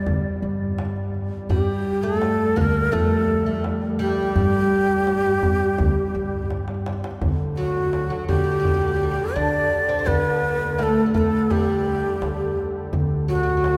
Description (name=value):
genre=Turkish makam ensemble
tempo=84 BPM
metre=4/4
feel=straight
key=G makam nihavent, D makam hicaz from 7.2 s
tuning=A4 = 440 Hz
part: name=breathy ney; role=melody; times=0.0-13.8 s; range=F#4 to D5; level=-25 LUFS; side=equal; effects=none
part: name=mellow duduk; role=drone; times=0.0-13.8 s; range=D3 to G3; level=-34 LUFS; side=equal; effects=none
part: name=upright bass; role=bass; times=0.1-13.8 s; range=D2 to G2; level=-28 LUFS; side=equal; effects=none
part: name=darbuka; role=percussion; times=0.1-13.8 s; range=none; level=-30 LUFS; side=equal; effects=none
part: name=oud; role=second line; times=1.5-13.7 s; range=F#3 to D4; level=-29 LUFS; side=equal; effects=none
room=wet cathedral reverb, RT60 5.6 s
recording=recorded in a church or concert hall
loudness=-22 LUFS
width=mono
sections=0.0-7.2 A section; 7.2-13.8 B section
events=drum fill 6.5-7.2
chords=none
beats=0.07 0.78 | 1.50 2.21 2.93 3.64 | 4.36 5.07 5.79 6.50 | 7.21 7.93 8.64 9.36 | 10.07 10.79 11.50 12.21 | 12.93 13.64